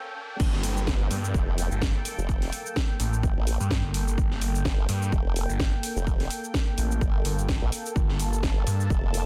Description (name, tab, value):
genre	bass house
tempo	127 BPM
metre	4/4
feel	swing 56% on 16ths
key	G minor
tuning	A4 = 439 Hz
part	sweeping resonant pad	sustained chords	0.0-9.3 s	Bb3 to A5	-38 LUFS	equal	chorus, sidechain pumping
part	riser and downlifter	sound effects	0.0-4.2 s	none	-43 LUFS	equal	none
part	phased detuned saw bass	bass	0.4-8.9 s	G1 to G2	-29 LUFS	equal	phaser, overdrive, sidechain pumping
part	electronic kick drum	drums	0.4-9.0 s	none	-28 LUFS	equal	overdrive, high-pass filter on kick, high-pass filter on room
part	house drum kit	drums	0.4-9.2 s	cabasa, crash cymbal, hi-hat, snare drum	-36 LUFS	equal	overdrive, high-pass filter on perc, high-pass filter on hats, high-pass filter on cymbals, high-pass filter on snare, high-pass filter on room
part	formant-sweep wobble bass	bass	0.9-9.2 s	F1 to Bb1	-30 LUFS	equal	chorus, tube saturation, sidechain pumping
room	digital ambience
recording	dense, heavily limited modern master, high-pass filter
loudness	-26 LUFS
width	mono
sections	0.4-9.3 A section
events	break 0.0-0.4; riser 0.0-0.4; drop 0.4-9.3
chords	0.4 Gmadd9